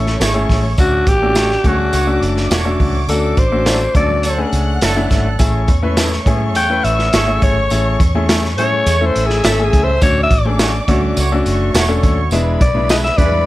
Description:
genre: uptempo 1960s-style soul.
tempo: 104 BPM.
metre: 4/4.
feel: straight.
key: A major.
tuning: A4 = 440 Hz.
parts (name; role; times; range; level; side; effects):
warm studio violin section; second line; 0.0-13.5 s; D4 to F#6; -26 LUFS; equal; plate reverb.
clear baby grand piano; accompaniment; 0.0-13.5 s; G#3 to B4; -20 LUFS; left 2 dB; none.
vintage muted fingered electric bass; bass; 0.0-13.4 s; E1 to A2; -18 LUFS; equal; none.
crunchy breakbeat drum kit; drums; 0.1-13.3 s; hi-hat, kick drum, snare drum; -17 LUFS; equal; none.
warm horn section; second line; 0.2-13.3 s; E3 to E5; -24 LUFS; right 4 dB; plate reverb.
congas; percussion; 0.2-13.5 s; none; -31 LUFS; right 2 dB; none.
tambourine; percussion; 0.2-13.0 s; none; -30 LUFS; right 4 dB; none.
raspy alto saxophone; melody; 0.8-13.5 s; F#4 to G5; -17 LUFS; left 2 dB; plate reverb.
room: light reverb.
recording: none.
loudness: -12 LUFS.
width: side -16 dB against mid.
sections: 0.0-13.5 A section.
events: alto saxophone solo 0.0-13.5.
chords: 0.0 Amaj7; 0.8 Dmaj7; 5.4 Amaj7; 10.0 Dmaj7; 12.3 E7.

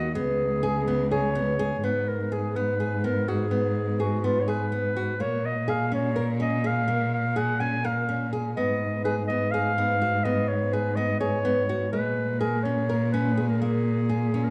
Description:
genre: contemporary instrumental, chamber music in an uneven meter.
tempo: 250 BPM (eighths).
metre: 7/8.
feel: straight.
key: G# dorian.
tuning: A4 = 444 Hz.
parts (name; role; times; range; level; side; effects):
warm clarinet; melody; 0.0-14.5 s; E#4 to G#5; -32 LUFS; equal; none.
nylon-string guitar; arpeggios; 0.0-14.5 s; G#3 to A#4; -31 LUFS; equal; none.
warm cello; bass; 0.0-14.5 s; C#2 to A#2; -29 LUFS; equal; none.
room: moderate recital hall reverb, RT60 1.8 s.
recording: dark, warm production.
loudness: -26 LUFS.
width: mono.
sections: 0.0-1.8 A section; 1.8-14.5 B section.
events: none.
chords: 0.1 C#5; 1.8 G#m; 5.2 A#m7; 8.6 G#m; 11.9 A#m7.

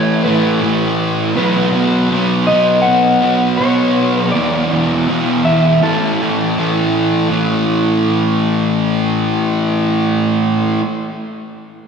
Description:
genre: rock.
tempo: 81 BPM.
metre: 4/4.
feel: straight.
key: A major.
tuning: A4 = 439 Hz.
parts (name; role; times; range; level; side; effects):
electric guitar through a small old amp; melody; 0.0-6.5 s; A4 to F#5; -18 LUFS; left 1 dB; ping-pong delay.
fuzz guitar; riff; 0.0-10.8 s; E2 to B3; -14 LUFS; equal; distortion, wide subtle chorus.
room: wet lush hall reverb, RT60 3.4 s.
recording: dreamy mix soaked in reverb.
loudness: -12 LUFS.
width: side -6 dB against mid.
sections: 0.0-7.3 A section; 7.3-10.3 B section.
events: none.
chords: 0.0 A5; 1.4 B5; 4.4 E5; 5.8 A5.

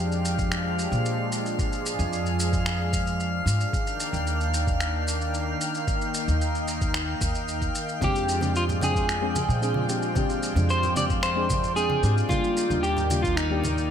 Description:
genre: sunset chillout.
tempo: 112 BPM.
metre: 4/4.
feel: straight.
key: F dorian.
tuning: A4 = 440 Hz.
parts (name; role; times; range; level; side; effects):
lush unison pad; sustained chords; 0.0-13.9 s; Eb3 to G5; -31 LUFS; equal; chorus.
upright bass; bass; 0.0-13.9 s; Eb2 to Bb2; -27 LUFS; equal; none.
drifting glass-harmonics texture; texture; 0.0-13.9 s; F5 to F6; -34 LUFS; equal; chorus, built-in reverb.
electronic shaker and finger snaps; drums; 0.1-13.9 s; none; -33 LUFS; equal; none.
electronic kick drum; drums; 0.4-13.3 s; none; -29 LUFS; equal; none.
electric guitar at the edge of break-up; melody; 8.0-13.9 s; Eb4 to D5; -27 LUFS; equal; ping-pong delay.
mellow FM electric piano; accompaniment; 8.0-13.7 s; G3 to G5; -30 LUFS; moving between left 6 dB and right 3 dB; chorus, auto-pan, cassette tape, ping-pong delay.
congas; percussion; 8.0-13.7 s; none; -33 LUFS; right 2 dB; none.
room: moderate lush hall reverb, RT60 2.3 s.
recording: bright 1980s-style digital production.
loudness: -23 LUFS.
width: side -8 dB against mid.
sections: 0.0-13.9 A section.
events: none.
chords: 0.0 Fm69; 3.7 Ebmaj7; 8.0 Fm69; 12.3 Ebmaj7.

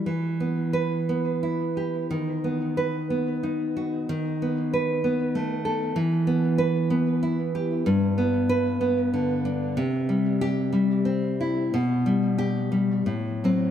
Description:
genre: romantic piece for solo classical guitar.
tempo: 77-99 BPM.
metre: 3/4.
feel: rubato.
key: E minor.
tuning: A4 = 442 Hz.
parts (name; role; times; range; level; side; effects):
nylon-string guitar; solo; 0.0-13.7 s; G2 to B4; -22 LUFS; equal; tape echo.
room: moderate concert hall reverb, RT60 1.8 s.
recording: none.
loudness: -22 LUFS.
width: side -9 dB against mid.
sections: 0.1-13.7 A section.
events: none.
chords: 0.1 Em; 2.1 B/D#; 4.1 B7/D#; 6.0 Em; 7.9 G; 9.8 C; 11.7 G/B; 13.1 F#dim/A.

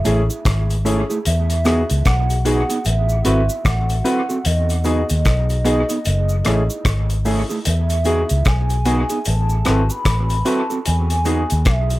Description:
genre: lovers rock reggae.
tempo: 75 BPM.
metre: 4/4.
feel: swing 61% on 16ths.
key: E major.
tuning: A4 = 440 Hz.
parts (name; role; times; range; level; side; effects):
hollow clarinet-like synth lead; melody; 0.0-12.0 s; D#5 to B5; -25 LUFS; equal; chorus, tape echo.
mellow electric guitar; stabs; 0.0-11.4 s; A3 to A4; -23 LUFS; right 3 dB; spring reverb, dub echo.
warm grand piano; accompaniment; 0.1-12.0 s; A3 to B4; -23 LUFS; left 3 dB; none.
vintage muted fingered electric bass; bass; 0.1-12.0 s; F#1 to E2; -18 LUFS; equal; none.
cloth-damped thuddy drum kit; drums; 0.1-12.0 s; hi-hat, kick drum, rim click; -22 LUFS; equal; dub echo.
cabasa; percussion; 0.1-12.0 s; none; -34 LUFS; right 2 dB; none.
room: little or no reverb.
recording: none.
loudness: -16 LUFS.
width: side -17 dB against mid.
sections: 0.0-12.0 A section.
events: none.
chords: 0.0 F#m9 (rootless); 1.3 Emaj7; 2.9 Am6; 4.5 Emaj7; 6.1 F#m9; 7.7 Emaj7; 9.3 Am6; 10.9 Emaj7.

